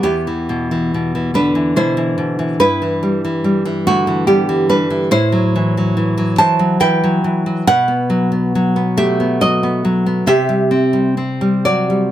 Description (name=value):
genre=romantic piece for solo classical guitar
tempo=70 BPM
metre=3/4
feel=rubato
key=unclear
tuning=A4 = 440 Hz
part: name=nylon-string guitar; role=solo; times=0.0-12.1 s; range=E2 to A5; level=-13 LUFS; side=equal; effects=none
room=light reverb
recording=none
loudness=-13 LUFS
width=side -12 dB against mid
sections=0.0-12.1 A section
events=none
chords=0.1 Em; 2.6 Em/G; 5.1 F#m7b5/A; 7.7 B5; 10.3 C